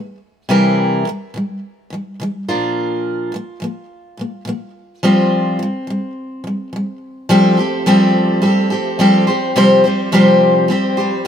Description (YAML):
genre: acoustic pop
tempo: 106 BPM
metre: 4/4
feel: straight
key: unclear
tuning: A4 = 441 Hz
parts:
  - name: picked steel-string acoustic guitar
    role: accompaniment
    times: 0.0-11.3 s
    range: Bb2 to C5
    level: -13 LUFS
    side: equal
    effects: none
  - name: tonewheel organ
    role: sustained chords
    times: 7.3-11.3 s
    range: F3 to C5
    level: -25 LUFS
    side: right 6 dB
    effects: chorus vibrato, stopped rotary speaker
room: little or no reverb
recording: close, detailed microphones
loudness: -13 LUFS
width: side -8 dB against mid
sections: 0.0-7.3 A section; 7.3-11.3 B section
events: none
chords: 0.5 C7; 2.5 Bb; 5.0 Fsus2; 7.3 Fadd9; 9.3 Csus4